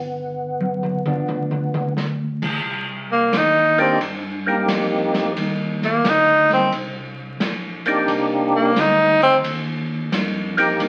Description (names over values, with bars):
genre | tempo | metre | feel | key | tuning
soul jazz organ trio | 88 BPM | 4/4 | swing 67% on 8ths | unclear | A4 = 441 Hz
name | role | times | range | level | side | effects
percussive tonewheel organ | melody | 0.0-10.9 s | Bb3 to G4 | -23 LUFS | equal | slow rotary speaker, chorus vibrato
tonewheel organ | bass | 0.0-10.9 s | G1 to G2 | -31 LUFS | equal | slow rotary speaker
open jazz drum kit | drums | 0.6-10.9 s | crash cymbal, hi-hat, kick drum, ride cymbal, snare drum, toms | -28 LUFS | equal | none
hollow-body jazz guitar | accompaniment | 1.1-10.9 s | F3 to Eb4 | -30 LUFS | equal | none
bright tenor saxophone | melody | 3.1-9.4 s | Bb3 to Eb4 | -18 LUFS | equal | none
room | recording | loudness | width
wet studio reverb, RT60 0.9 s | very old 78 rpm record, vinyl crackle, nothing above 10.4 kHz | -20 LUFS | mono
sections
0.0-2.6 A section; 2.6-10.9 B section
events
drum fill 0.6-2.0; tenor saxophone solo 2.6-10.9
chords
0.0 G7; 2.6 Cm7